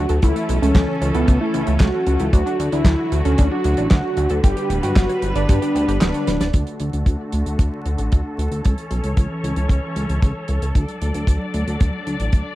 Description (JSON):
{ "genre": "italo disco", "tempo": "114 BPM", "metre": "4/4", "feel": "straight", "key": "D major", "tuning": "A4 = 439 Hz", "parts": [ { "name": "wide unison lead", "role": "melody", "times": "0.0-6.5 s", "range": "B3 to G4", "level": "-22 LUFS", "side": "equal", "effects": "tape echo" }, { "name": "rich studio string section", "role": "sustained chords", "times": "0.0-12.6 s", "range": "D3 to D5", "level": "-27 LUFS", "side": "equal", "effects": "low-pass filter" }, { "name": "analog pluck", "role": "arpeggios", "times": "0.0-6.5 s", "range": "A3 to D5", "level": "-28 LUFS", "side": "right 3 dB", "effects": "chorus, phaser, tape echo" }, { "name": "chorused synth bass", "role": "bass", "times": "0.0-12.4 s", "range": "D1 to G2", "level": "-21 LUFS", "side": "equal", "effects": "tube saturation" }, { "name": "damped 70s drum kit", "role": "drums", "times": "0.1-12.4 s", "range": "handclaps, hi-hat, snare drum", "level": "-24 LUFS", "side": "right 1 dB", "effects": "studio ambience" }, { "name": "kick drum", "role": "drums", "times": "0.2-12.4 s", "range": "none", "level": "-15 LUFS", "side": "equal", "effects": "studio ambience" } ], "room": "small room ambience", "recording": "dry, close 1970s-style studio recording, vinyl crackle", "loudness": "-17 LUFS", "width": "side -16 dB against mid", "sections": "0.0-6.5 A section; 6.5-12.6 B section", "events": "kick drops out 6.0-6.5; band accent 6.0; drum fill 6.3; filter sweep on string section 6.5-12.6", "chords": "0.2 A; 2.3 D; 4.4 G; 6.5 D; 8.6 A; 10.8 D" }